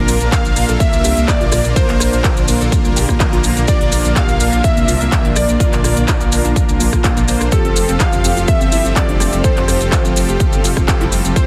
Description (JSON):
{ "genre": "progressive house", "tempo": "125 BPM", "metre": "4/4", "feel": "straight", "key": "unclear", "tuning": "A4 = 444 Hz", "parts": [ { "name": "plucky unison lead", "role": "melody", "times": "0.0-11.5 s", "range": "A4 to F5", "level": "-24 LUFS", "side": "equal", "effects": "tape echo" }, { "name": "warm studio violin section", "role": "second line", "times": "0.0-11.5 s", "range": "A4 to F5", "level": "-31 LUFS", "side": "equal", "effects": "none" }, { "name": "shimmering ambient pad", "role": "sustained chords", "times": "0.0-11.5 s", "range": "C3 to F4", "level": "-30 LUFS", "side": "equal", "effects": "none" }, { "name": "unison pluck", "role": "arpeggios", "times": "0.0-11.5 s", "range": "Bb3 to C5", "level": "-26 LUFS", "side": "equal", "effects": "sidechain pumping, tape echo" }, { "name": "soft supersaw", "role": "stabs", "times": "0.0-11.5 s", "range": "Bb2 to C5", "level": "-23 LUFS", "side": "equal", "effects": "sidechain pumping, tape echo" }, { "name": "dark detuned saw bass", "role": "bass", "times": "0.0-11.3 s", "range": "F1 to C2", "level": "-21 LUFS", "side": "equal", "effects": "sidechain pumping" }, { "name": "big-room dance drum kit", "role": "drums", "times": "0.1-11.5 s", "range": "handclaps, hi-hat, rim click", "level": "-25 LUFS", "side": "equal", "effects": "overdrive, studio reverb" }, { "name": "maracas", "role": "percussion", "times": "0.1-11.5 s", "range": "none", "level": "-27 LUFS", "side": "equal", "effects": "none" }, { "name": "electronic kick drum", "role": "drums", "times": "0.3-11.5 s", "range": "none", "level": "-18 LUFS", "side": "equal", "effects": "overdrive, studio reverb" }, { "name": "swell", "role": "sound effects", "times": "6.7-7.5 s", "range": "none", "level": "-32 LUFS", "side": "equal", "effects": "none" }, { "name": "twinkling granular texture", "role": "texture", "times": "9.4-11.5 s", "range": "F4 to G5", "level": "-37 LUFS", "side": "equal", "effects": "none" } ], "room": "light reverb, digital ambience", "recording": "heavily compressed radio sound, multiband compression", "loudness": "-14 LUFS", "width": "mono", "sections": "0.0-11.5 A section", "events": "swell 6.7-7.5", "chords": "0.0 Bb; 7.5 Fadd9", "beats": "0.32 0.80 1.28 | 1.76 2.24 2.72 3.20 | 3.68 4.16 4.64 5.12 | 5.60 6.08 6.56 7.04 | 7.52 8.00 8.48 8.96 | 9.44 9.92 10.40 10.88 | 11.36" }